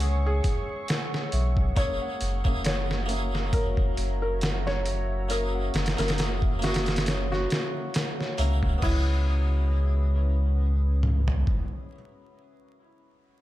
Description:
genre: trip hop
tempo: 68 BPM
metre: 4/4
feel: swing 55% on 16ths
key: C# dorian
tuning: A4 = 439 Hz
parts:
  - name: felt-muted upright piano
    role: melody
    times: 0.0-11.9 s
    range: E4 to C#5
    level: -34 LUFS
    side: equal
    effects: dub echo
  - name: harpsichord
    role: accompaniment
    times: 0.0-12.0 s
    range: A#3 to D#5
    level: -36 LUFS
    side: right 1 dB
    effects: harmonic tremolo, tape echo
  - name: deep dark ambient pad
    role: sustained chords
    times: 0.0-11.9 s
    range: C#4 to E6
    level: -38 LUFS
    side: left 1 dB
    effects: chorus, built-in reverb
  - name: large celesta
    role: arpeggios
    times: 0.0-13.4 s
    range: C#5 to F#5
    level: -39 LUFS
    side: equal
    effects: vintage 12-bit sampler grit, tape echo
  - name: soft dub sub bass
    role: bass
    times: 0.0-11.4 s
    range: F#1 to C#2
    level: -25 LUFS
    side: equal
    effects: none
  - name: trip hop sampler-style drum kit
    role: drums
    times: 0.0-11.7 s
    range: crash cymbal, hi-hat, kick drum, snare drum, toms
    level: -28 LUFS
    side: equal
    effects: none
room: digital ambience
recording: vinyl crackle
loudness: -23 LUFS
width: side -15 dB against mid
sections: 0.0-8.8 A section; 8.8-12.4 B section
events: none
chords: 0.0 C#m7; 1.8 F#7; 8.8 C#m7

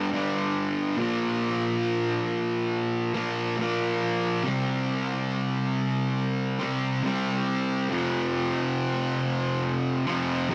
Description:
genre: metal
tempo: 69 BPM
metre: 4/4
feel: straight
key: unclear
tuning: A4 = 440 Hz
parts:
  - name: fuzz guitar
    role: solo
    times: 0.0-10.5 s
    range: F2 to C4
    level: -27 LUFS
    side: equal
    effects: distortion, delay
room: light reverb, digital ambience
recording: none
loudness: -27 LUFS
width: mono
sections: 0.0-10.5 A section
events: none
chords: 0.0 G5; 1.0 Bb5; 4.5 C5; 7.9 F5

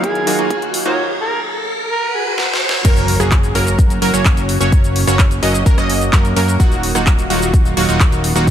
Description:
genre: EDM, festival progressive house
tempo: 128 BPM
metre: 4/4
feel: straight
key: unclear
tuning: A4 = 441 Hz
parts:
  - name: warm alto saxophone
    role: melody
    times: 0.0-2.3 s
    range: Ab4 to Db5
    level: -21 LUFS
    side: right 1 dB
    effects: ping-pong delay
  - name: bright baby grand piano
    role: accompaniment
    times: 0.0-2.9 s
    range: Gb3 to F5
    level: -29 LUFS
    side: equal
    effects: sidechain pumping, ping-pong delay
  - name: lush unison pad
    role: sustained chords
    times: 0.0-8.5 s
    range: Eb2 to F5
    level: -26 LUFS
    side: right 2 dB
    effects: chorus, sidechain pumping
  - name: supersaw stab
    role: riff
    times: 0.0-8.5 s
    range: Gb3 to Eb5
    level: -19 LUFS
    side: right 1 dB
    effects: sidechain pumping, ping-pong delay
  - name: electronic kick drum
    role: drums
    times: 0.0-8.5 s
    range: none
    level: -13 LUFS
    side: equal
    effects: high-pass filter on kick
  - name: pop drum kit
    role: drums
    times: 0.0-8.5 s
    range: crash cymbal, handclaps, hi-hat, rim click, shaker, snare drum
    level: -20 LUFS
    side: equal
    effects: overdrive, high-pass filter on hats, high-pass filter on snare, high-pass filter on cymbals, high-pass filter on perc, high-pass filter on room
  - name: riser, swell and impact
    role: sound effects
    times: 0.0-4.7 s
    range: none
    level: -22 LUFS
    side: equal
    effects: none
  - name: plucky unison lead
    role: arpeggios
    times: 2.8-8.5 s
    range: Gb4 to Eb5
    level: -22 LUFS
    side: equal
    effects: sidechain pumping, ping-pong delay
  - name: fat analog bass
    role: bass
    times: 2.8-8.5 s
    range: Eb1 to Gb2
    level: -19 LUFS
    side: equal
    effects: tube saturation, sidechain pumping
room: light reverb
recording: high-pass filter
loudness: -12 LUFS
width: side -10 dB against mid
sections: 0.0-2.8 A section; 2.8-8.5 B section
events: build-up 0.0-2.8; drum fill 0.0-1.0, 2.4-2.8; riser 0.0-2.8; filter sweep on supersaw synth 0.0-2.8; filter sweep 0.0-2.8; swell 1.9-2.8; drop 2.8-8.5; impact 2.8-4.7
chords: 0.0 Ebmadd9; 2.8 Gb; 6.6 Ebmadd9

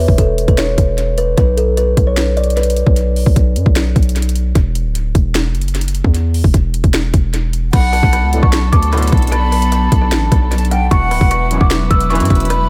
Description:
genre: hip hop, trap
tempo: 151 BPM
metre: 4/4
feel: half-time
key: B minor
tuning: A4 = 439 Hz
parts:
  - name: kalimba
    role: melody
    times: 0.0-2.9, 7.7-12.7 s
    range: A4 to E6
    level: -22 LUFS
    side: equal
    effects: low-pass filter, tape echo
  - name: hard-hitting 808-style bass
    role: bass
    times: 0.0-12.7 s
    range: D1 to G2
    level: -18 LUFS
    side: equal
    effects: none
  - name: trap drum kit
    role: drums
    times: 0.1-12.6 s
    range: crash cymbal, finger snaps, hi-hat, kick drum, snare drum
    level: -17 LUFS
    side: equal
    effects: tape echo
  - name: breathy mellow silver concert flute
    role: second line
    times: 7.7-12.7 s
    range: F#5 to B5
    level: -23 LUFS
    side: equal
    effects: tape echo
  - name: dark studio string section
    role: sustained chords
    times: 7.7-12.7 s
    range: F#3 to B4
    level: -25 LUFS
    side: equal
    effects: none
  - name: mellow brass ensemble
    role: stabs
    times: 8.3-12.5 s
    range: F#2 to E3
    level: -24 LUFS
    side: equal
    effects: none
room: studio reverb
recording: echo-heavy mix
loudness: -14 LUFS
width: mono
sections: 0.0-7.7 A section; 7.7-12.7 B section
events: none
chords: 0.0 E5; 1.4 B5; 4.6 Esus2; 7.7 Bm7; 10.9 Esus2

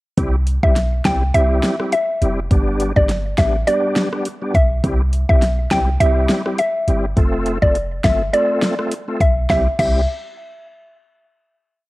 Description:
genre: dancehall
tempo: 103 BPM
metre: 4/4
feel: swing 56% on 16ths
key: C major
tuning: A4 = 440 Hz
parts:
  - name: bright tonewheel organ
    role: accompaniment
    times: 0.2-10.0 s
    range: G3 to A4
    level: -23 LUFS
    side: equal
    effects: chorus vibrato, fast rotary speaker, cassette tape
  - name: clean 808-style bass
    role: bass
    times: 0.2-10.1 s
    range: F1 to C2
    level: -18 LUFS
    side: equal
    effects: none
  - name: deep house drum kit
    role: drums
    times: 0.2-9.9 s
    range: crash cymbal, hi-hat, kick drum, rim click, snare drum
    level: -19 LUFS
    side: equal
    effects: cassette tape
  - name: mallet-like synth pluck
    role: melody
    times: 0.6-10.1 s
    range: D5 to G5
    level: -19 LUFS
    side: equal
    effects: chorus, cassette tape
room: little or no reverb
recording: home recording on cassette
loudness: -15 LUFS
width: side -19 dB against mid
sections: 0.2-9.5 verse; 9.5-11.8 final chord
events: none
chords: 0.2 C; 2.5 G; 4.8 C; 7.2 F; 9.5 C

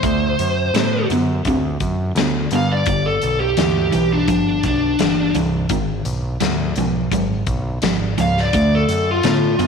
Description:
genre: blues rock power trio and southern rock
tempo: 85 BPM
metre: 4/4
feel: straight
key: unclear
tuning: A4 = 440 Hz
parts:
  - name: bluesy overdriven lead guitar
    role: melody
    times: 0.0-9.7 s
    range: D4 to F5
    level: -20 LUFS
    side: left 1 dB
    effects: distortion, slapback echo
  - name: crunchy overdriven guitar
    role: riff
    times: 0.0-9.7 s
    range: G2 to C4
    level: -20 LUFS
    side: right 1 dB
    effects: none
  - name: growling picked electric bass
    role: bass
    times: 0.0-9.7 s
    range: G1 to A2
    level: -23 LUFS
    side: right 1 dB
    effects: overdrive
  - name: big rock drum kit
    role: drums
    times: 0.0-9.7 s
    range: hi-hat, kick drum, snare drum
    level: -25 LUFS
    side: left 4 dB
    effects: none
room: moderate echo chamber reverb, RT60 2.7 s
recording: 1960s-style stereo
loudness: -16 LUFS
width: side -6 dB against mid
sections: 0.0-9.7 A section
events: none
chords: 0.0 D7; 2.9 G7; 5.7 G#m6; 8.5 D

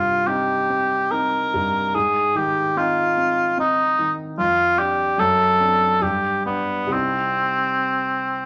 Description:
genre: classical, romantic duo for cor anglais and grand piano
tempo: 64-76 BPM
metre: 3/4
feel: rubato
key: C minor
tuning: A4 = 440 Hz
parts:
  - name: warm cor anglais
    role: melody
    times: 0.0-8.5 s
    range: B3 to Bb4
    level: -21 LUFS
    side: equal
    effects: none
  - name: warm baby grand piano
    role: accompaniment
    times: 0.0-8.5 s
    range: C2 to Eb4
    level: -29 LUFS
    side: equal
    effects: none
room: moderate large studio reverb, RT60 1.0 s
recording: none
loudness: -20 LUFS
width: mono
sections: 0.0-8.5 A section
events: none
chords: 0.0 Cm; 1.9 Ab; 4.4 Dmadd11/F; 5.2 D7/F#; 6.0 G; 6.9 Cm

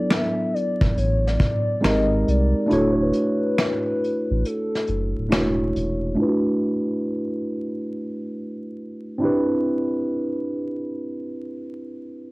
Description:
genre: lo-fi hip hop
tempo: 69 BPM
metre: 4/4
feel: swing 66% on 16ths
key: D major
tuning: A4 = 439 Hz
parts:
  - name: hollow clarinet-like synth lead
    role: melody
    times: 0.0-5.3 s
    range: A4 to E5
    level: -27 LUFS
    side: left 2 dB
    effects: chorus, cassette tape
  - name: tine electric piano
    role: accompaniment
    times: 0.0-12.3 s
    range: F#3 to C#5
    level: -23 LUFS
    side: right 1 dB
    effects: cassette tape, low-pass filter
  - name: vintage brush drum kit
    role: drums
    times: 0.1-6.0 s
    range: finger snaps, hi-hat, kick drum, snare drum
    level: -23 LUFS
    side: equal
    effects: cassette tape
  - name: soft dub sub bass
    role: bass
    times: 0.8-6.2 s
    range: D1 to B#1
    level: -23 LUFS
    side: equal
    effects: none
room: moderate booth ambience, RT60 0.2 s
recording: home recording on cassette, vinyl crackle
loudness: -20 LUFS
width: side -21 dB against mid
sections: 0.0-6.2 A section; 6.2-12.3 B section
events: kick muted 2.7-6.2; filter sweep on tine electric piano 6.2-12.3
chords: 0.0 D69; 1.8 G#maj9; 2.7 Dmaj9; 6.2 D69; 9.2 Cmaj9

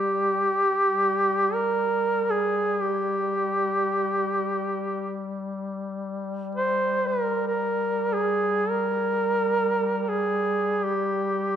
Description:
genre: caucasian folk, Caucasian lament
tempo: free time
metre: none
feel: none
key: G phrygian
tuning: A4 = 440 Hz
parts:
  - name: warm duduk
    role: melody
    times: 0.0-11.6 s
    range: G4 to C5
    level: -23 LUFS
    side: right 1 dB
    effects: none
  - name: warm duduk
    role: drone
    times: 0.0-11.6 s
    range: G3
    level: -31 LUFS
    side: left 5 dB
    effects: none
room: moderate concert hall reverb, RT60 1.8 s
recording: minimal, uncompressed stereo recording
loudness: -23 LUFS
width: side -9 dB against mid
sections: 0.0-11.6 A section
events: none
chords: none

